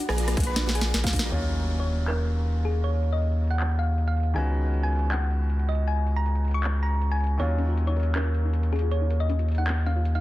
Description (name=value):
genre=future bass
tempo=158 BPM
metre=4/4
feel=half-time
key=Eb minor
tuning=A4 = 445 Hz
part: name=soft round pluck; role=arpeggios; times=0.0-1.3, 7.4-10.2 s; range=Db4 to Bb4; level=-38 LUFS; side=left 3 dB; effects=chorus, sidechain pumping, dub echo
part: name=thumb-piano-like synth pluck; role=melody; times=0.1-10.2 s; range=F4 to Db6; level=-32 LUFS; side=equal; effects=chorus, sidechain pumping, dub echo
part: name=dense compressed supersaw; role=riff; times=0.1-1.3 s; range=Bb3 to Bb5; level=-36 LUFS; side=right 1 dB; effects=sidechain pumping, low-pass filter
part: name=saturated sub bass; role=bass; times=0.1-10.2 s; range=Bb1 to Eb2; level=-24 LUFS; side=equal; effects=sidechain pumping
part: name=trap drum kit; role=drums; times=0.1-10.2 s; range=handclaps, hi-hat, rim click, snare drum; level=-32 LUFS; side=equal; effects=overdrive, low-pass filter on snare, small room ambience, low-pass filter on hats
part: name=electronic kick drum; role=drums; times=0.4-1.2 s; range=none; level=-26 LUFS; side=equal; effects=overdrive, small room ambience
part: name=clear concert grand piano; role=accompaniment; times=1.3-10.2 s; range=Eb3 to Gb4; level=-36 LUFS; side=left 2 dB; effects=sidechain pumping
part: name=sub drop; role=sound effects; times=1.3-2.8 s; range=none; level=-36 LUFS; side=equal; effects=none
room=little or no reverb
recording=dense, heavily limited modern master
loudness=-23 LUFS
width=side -16 dB against mid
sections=0.0-1.3 A section; 1.3-10.2 B section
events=drop 0.0-1.3; drum fill 0.6-1.3; band accent 1.2; impact 1.3-2.8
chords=0.0 Bb7b9b13; 1.3 Ebm9; 4.4 Db9sus4; 7.4 Ebm9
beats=0.18 0.56 0.94 | 1.32 1.70 2.08 2.46 | 2.84 3.22 3.60 3.98 | 4.36 4.74 5.12 5.50 | 5.88 6.26 6.64 7.02 | 7.40 7.78 8.16 8.54 | 8.91 9.29 9.68 10.05